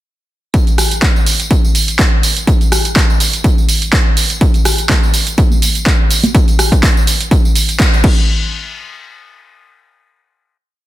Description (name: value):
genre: house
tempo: 124 BPM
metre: 4/4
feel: swing 54% on 16ths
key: none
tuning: none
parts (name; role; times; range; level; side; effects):
- electronic kick drum; drums; 0.5-8.1 s; none; -11 LUFS; equal; overdrive
- punchy analog drum machine; drums; 0.5-8.1 s; crash cymbal, handclaps, hi-hat, rim click, tambourine; -16 LUFS; right 1 dB; overdrive, sidechain pumping on hats, sidechain pumping on perc, sidechain pumping on cymbals
- egg shaker and congas; percussion; 4.4-6.3 s; none; -20 LUFS; right 2 dB; sidechain pumping on perc
room: little or no reverb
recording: dense, heavily limited modern master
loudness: -10 LUFS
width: side -15 dB against mid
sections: 0.5-8.3 drop; 8.3-10.9 final hit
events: drop 0.5-8.3; band accent 7.8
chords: none